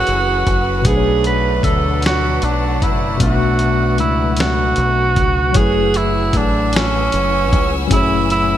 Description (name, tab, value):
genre	slow six-eight R&B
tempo	51 BPM (dotted quarters)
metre	6/8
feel	straight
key	F# minor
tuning	A4 = 439 Hz
part	warm tenor saxophone	melody	0.0-8.6 s	C#4 to B4	-17 LUFS	right 3 dB	none
part	tine electric piano	accompaniment	0.0-8.6 s	B2 to E5	-21 LUFS	left 4 dB	medium stereo tremolo
part	clear studio string section	sustained chords	0.0-8.6 s	B4 to E6	-27 LUFS	left 3 dB	none
part	warm horn section	stabs	0.0-5.1 s	E3 to C#5	-27 LUFS	left 3 dB	digital delay
part	deep dub fingered electric bass	bass	0.0-8.6 s	F#1 to D2	-20 LUFS	equal	none
part	dusty soul sampler-style drum kit	drums	0.1-8.5 s	hi-hat, kick drum, snare drum	-19 LUFS	equal	none
room	moderate lush hall reverb, RT60 3.2 s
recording	bright 1980s-style digital production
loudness	-13 LUFS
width	side -11 dB against mid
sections	0.0-5.6 A section; 5.6-8.6 A section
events	none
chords	0.0 F#m11; 0.8 Bm7; 5.6 F#m11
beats	| 0.85 2.02 | 3.20 4.38 | 5.55 6.73 | 7.91